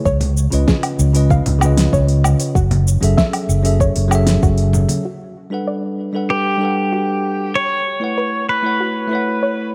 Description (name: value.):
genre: sunset chillout.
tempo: 96 BPM.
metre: 4/4.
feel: straight.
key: unclear.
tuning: A4 = 441 Hz.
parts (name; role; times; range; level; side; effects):
bell-like tine electric piano; accompaniment; 0.0-9.7 s; C#3 to F#5; -23 LUFS; equal; tape echo.
soft round pluck; arpeggios; 0.1-9.7 s; F#4 to E#5; -28 LUFS; equal; chorus, tape echo.
fretless electric bass; bass; 0.1-4.8 s; F#1 to C#2; -17 LUFS; equal; lush chorus.
electronic kick drum; drums; 0.1-4.6 s; none; -20 LUFS; equal; overdrive, studio reverb.
smooth R&B drum kit; drums; 0.1-5.0 s; hi-hat, shaker, snare drum, woodblock; -24 LUFS; equal; overdrive, studio reverb.
congas; percussion; 0.2-5.0 s; none; -26 LUFS; equal; none.
pedal steel guitar; melody; 6.3-9.7 s; G4 to C#5; -21 LUFS; equal; digital delay.
room: light reverb, digital ambience.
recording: none.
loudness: -17 LUFS.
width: mono.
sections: 0.0-5.1 A section; 5.1-9.7 B section.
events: none.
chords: 0.1 C#7; 2.6 F#m7; 5.1 Gmaj7; 7.6 A69.